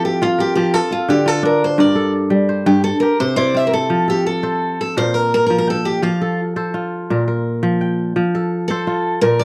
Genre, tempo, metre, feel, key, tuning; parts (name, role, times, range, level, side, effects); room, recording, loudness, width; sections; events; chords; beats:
west african traditional; 113 BPM (dotted quarters); 12/8; straight; F major; A4 = 440 Hz
picked steel-string acoustic guitar; melody; 0.0-9.4 s; F4 to E5; -20 LUFS; equal
kora; arpeggios; 0.0-9.4 s; G2 to G5; -20 LUFS; equal
light reverb; dry, close 1970s-style studio recording; -17 LUFS; mono
0.0-3.9 A section; 3.9-9.4 B section
steel-string acoustic guitar solo 0.0-3.9
0.0 F; 0.7 Dm; 1.8 Gm; 2.8 C; 3.9 F; 5.0 Bb5; 6.0 F; 7.1 Bb5; 8.2 F
0.20 0.73 1.26 | 1.78 2.31 2.84 3.37 | 3.90 4.43 4.96 5.50 | 6.03 6.56 7.09 7.62 | 8.16 8.69 9.22